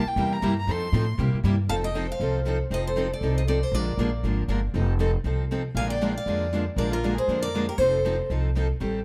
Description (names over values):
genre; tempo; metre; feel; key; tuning
acoustic string swing (jazz manouche); 236 BPM; 4/4; swing 57% on 8ths; F mixolydian; A4 = 440 Hz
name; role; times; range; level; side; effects
warm violin; second line; 0.0-8.3 s; F4 to C6; -34 LUFS; equal; none
picked steel-string acoustic guitar; accompaniment; 0.0-9.0 s; C3 to Bb4; -33 LUFS; equal; none
picked steel-string acoustic guitar; accompaniment; 0.0-9.0 s; C3 to A4; -34 LUFS; equal; none
upright bass; bass; 0.0-9.0 s; F1 to C3; -29 LUFS; equal; none
picked steel-string acoustic guitar; melody; 1.7-8.3 s; Bb4 to A5; -31 LUFS; equal; none
room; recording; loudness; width
moderate studio reverb, RT60 0.8 s; dark, warm production; -25 LUFS; mono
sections
0.0-1.7 A section; 1.7-9.0 B section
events
violin solo 0.0-1.7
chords
0.0 C7; 0.7 F7; 1.2 C7; 1.7 F7; 3.7 Bb7; 4.7 F7; 5.8 Bb7; 7.8 F7